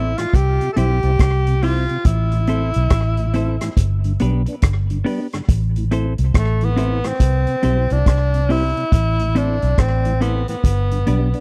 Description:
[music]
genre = roots reggae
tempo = 70 BPM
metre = 4/4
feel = swing 62% on 16ths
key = A minor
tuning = A4 = 436 Hz
[part]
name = breathy tenor saxophone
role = melody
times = 0.0-11.4 s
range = A3 to A4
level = -25 LUFS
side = equal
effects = tape echo
[part]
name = clean electric guitar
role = accompaniment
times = 0.0-11.4 s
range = B3 to C5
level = -27 LUFS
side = equal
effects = tape echo
[part]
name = mellow tonewheel organ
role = accompaniment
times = 0.0-11.4 s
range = G2 to E4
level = -30 LUFS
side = equal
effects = chorus vibrato, slow rotary speaker
[part]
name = vintage muted fingered electric bass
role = bass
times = 0.0-11.3 s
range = G1 to C2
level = -20 LUFS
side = equal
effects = none
[part]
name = vintage drum kit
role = drums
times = 0.2-11.4 s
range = hi-hat, kick drum, rim click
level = -19 LUFS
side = equal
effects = none
[sound]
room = studio reverb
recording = dry, close 1970s-style studio recording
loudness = -18 LUFS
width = mono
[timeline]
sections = 0.0-11.4 A section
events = none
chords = 0.3 C; 2.1 Am; 3.8 G; 5.5 Am; 7.2 C; 8.9 Am; 10.6 G

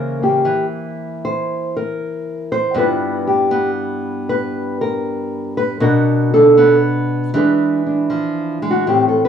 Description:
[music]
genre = solo jazz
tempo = 78 BPM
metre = 4/4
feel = swing 68% on 8ths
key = G mixolydian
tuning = A4 = 440 Hz
[part]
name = nylon-string guitar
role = solo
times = 0.0-9.3 s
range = G2 to C5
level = -15 LUFS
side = equal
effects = none
[sound]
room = moderate studio reverb, RT60 0.6 s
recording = band playing live in one room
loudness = -15 LUFS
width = side -8 dB against mid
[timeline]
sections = 0.0-9.3 A section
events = nylon-string guitar solo 0.0-9.3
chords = 0.0 C#dim7; 2.8 G6; 5.8 Bm; 7.3 E7

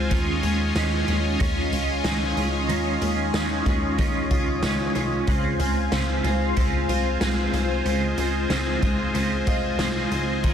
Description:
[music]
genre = dream pop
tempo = 93 BPM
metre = 4/4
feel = straight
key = unclear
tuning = A4 = 441 Hz
[part]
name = twelve-string electric guitar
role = accompaniment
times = 0.0-10.5 s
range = Db3 to F4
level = -29 LUFS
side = right 6 dB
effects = tremolo, ensemble chorus
[part]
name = phased analog pad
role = sustained chords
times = 0.0-10.5 s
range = F4 to Ab5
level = -28 LUFS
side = left 1 dB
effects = phaser, chorus
[part]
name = picked twelve-string acoustic guitar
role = arpeggios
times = 0.0-10.5 s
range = Eb3 to F4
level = -28 LUFS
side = left 4 dB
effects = wide subtle chorus, ping-pong delay
[part]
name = plucky analog bass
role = bass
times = 0.0-10.5 s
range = C2 to Eb2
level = -27 LUFS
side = equal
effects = none
[part]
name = raw garage drum kit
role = drums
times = 0.1-10.5 s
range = hi-hat, kick drum, snare drum, tambourine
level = -27 LUFS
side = equal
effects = soft clipping on snare
[part]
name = flamenco guitar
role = texture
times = 0.8-10.5 s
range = Db5 to F5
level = -39 LUFS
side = right 6 dB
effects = none
[sound]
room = light reverb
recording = dense, heavily limited modern master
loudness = -21 LUFS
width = side -8 dB against mid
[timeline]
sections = 0.0-10.5 A section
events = none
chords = 0.1 Dbmaj7

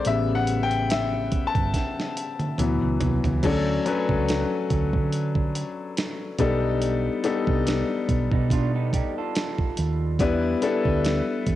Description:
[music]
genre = R&B, neo-soul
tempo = 71 BPM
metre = 4/4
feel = swing 55% on 16ths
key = D major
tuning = A4 = 441 Hz
[part]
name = clear baby grand piano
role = accompaniment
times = 0.0-11.6 s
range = C#3 to A5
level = -25 LUFS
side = left 4 dB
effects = cassette tape
[part]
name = dusty soul sampler-style drum kit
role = drums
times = 0.0-11.6 s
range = crash cymbal, hi-hat, kick drum, snare drum, toms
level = -27 LUFS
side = right 2 dB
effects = cassette tape
[part]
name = hollow-body short-scale fingered electric bass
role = bass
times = 0.1-11.6 s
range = G1 to D3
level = -26 LUFS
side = right 2 dB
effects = none
[part]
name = electric guitar through a small old amp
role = second line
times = 8.3-10.2 s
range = B3 to A4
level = -32 LUFS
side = right 8 dB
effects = cassette tape
[sound]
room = light reverb, digital ambience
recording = home recording on cassette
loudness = -22 LUFS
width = side -14 dB against mid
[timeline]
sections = 0.0-3.4 A section; 3.4-11.6 B section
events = grand piano solo 0.0-3.4; drum fill 1.7-3.4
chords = 0.0 A9; 2.6 D69; 3.4 Dmaj7; 6.4 B7alt; 10.2 Em7

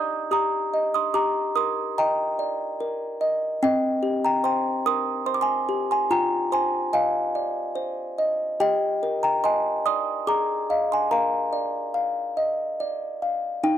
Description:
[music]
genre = classical, lullaby for music box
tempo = 72 BPM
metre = 3/4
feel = straight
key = unclear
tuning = A4 = 441 Hz
[part]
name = music box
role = solo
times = 0.0-13.8 s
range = C4 to G6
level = -22 LUFS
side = equal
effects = none
[sound]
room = little or no reverb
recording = dry, close 1970s-style studio recording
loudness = -22 LUFS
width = side -10 dB against mid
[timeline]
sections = 0.0-13.6 A section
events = none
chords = 0.0 Eb; 1.1 Eb/G; 3.6 Cm; 6.1 Fm7; 8.6 Eb/G; 10.3 Fm7/Ab; 11.1 Bb

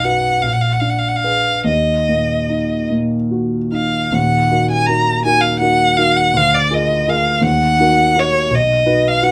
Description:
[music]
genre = classical, romantic duo for violin and grand piano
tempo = 48-57 BPM (dotted quarters)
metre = 6/8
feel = rubato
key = Eb minor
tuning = A4 = 440 Hz
[part]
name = rich violin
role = melody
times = 0.0-9.3 s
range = Db5 to Bb5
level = -17 LUFS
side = equal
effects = none
[part]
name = dark concert grand piano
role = accompaniment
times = 0.0-9.3 s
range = Eb1 to B4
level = -19 LUFS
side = equal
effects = none
[sound]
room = moderate large studio reverb, RT60 0.9 s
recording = none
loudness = -15 LUFS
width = mono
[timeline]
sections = 0.0-4.1 A section; 4.1-9.3 A section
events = none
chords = 0.4 Bb7b9; 1.7 Ebm; 6.3 Bb7/D; 7.4 Ebm; 8.5 B

